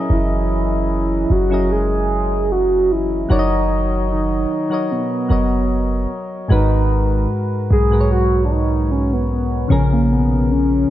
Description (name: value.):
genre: contemporary R&B.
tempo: 75 BPM.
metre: 4/4.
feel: swing 54% on 16ths.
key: G# minor.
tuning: A4 = 440 Hz.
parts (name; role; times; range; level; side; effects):
soft electric-piano-like synth keys; accompaniment; 0.0-10.9 s; G#2 to D#5; -21 LUFS; left 1 dB; chorus.
soft octave-layered synth lead; melody; 0.1-10.9 s; A#3 to G#4; -19 LUFS; equal; chorus, phaser, digital delay.
warm 808-style bass; bass; 0.1-10.9 s; F#1 to B1; -19 LUFS; equal; none.
room: light reverb.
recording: nothing above 7.8 kHz.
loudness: -15 LUFS.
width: side -13 dB against mid.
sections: 0.0-10.9 A section.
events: none.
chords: 0.0 F#13; 3.3 Bmaj7/F#; 6.5 G#m9; 9.7 A#m7.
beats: | 0.10 0.90 1.70 2.50 | 3.30 4.10 4.90 5.70 | 6.50 7.30 8.10 8.90 | 9.70 10.50.